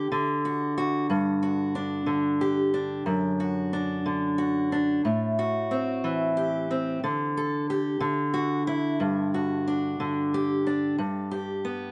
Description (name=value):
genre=folk, solo fingerstyle acoustic guitar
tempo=61 BPM (dotted quarters)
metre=6/8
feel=straight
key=unclear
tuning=A4 = 439 Hz
part: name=fingerpicked steel-string acoustic guitar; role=solo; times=0.0-11.9 s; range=F#2 to A4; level=-27 LUFS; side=equal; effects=tape echo
room=light reverb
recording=nothing above 10.7 kHz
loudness=-27 LUFS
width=mono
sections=0.0-9.0 A section; 9.0-11.9 A section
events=none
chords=0.1 D; 1.1 G5; 3.1 D/F#; 5.0 Am; 7.0 G5/D; 8.0 Dadd9; 9.0 G5; 11.0 Em/G (rootless)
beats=0.10 | 1.09 2.08 | 3.07 4.06 | 5.05 6.04 | 7.03 8.02 | 9.01 9.99 | 10.98